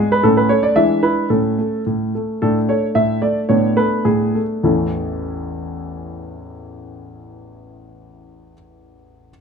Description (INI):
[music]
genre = classical-period piano sonatina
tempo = 98-118 BPM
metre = 2/4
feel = rubato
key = A major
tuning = A4 = 440 Hz
[part]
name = clear concert grand piano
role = solo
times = 0.0-9.3 s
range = A1 to E5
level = -16 LUFS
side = equal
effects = none
[sound]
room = light reverb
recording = close, detailed microphones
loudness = -15 LUFS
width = side -6 dB against mid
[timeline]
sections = 0.0-2.4 A section; 2.4-4.6 B section; 4.6-7.1 C section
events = slowing down 1.9-4.6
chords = 0.2 A; 0.8 E7; 1.3 A; 2.4 D5/A; 3.5 Bm13/A; 4.6 A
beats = | 0.24 0.77 | 1.31 1.87 | 2.42 2.96 | 3.50 4.05 | 4.65 5.25 | 5.86 6.47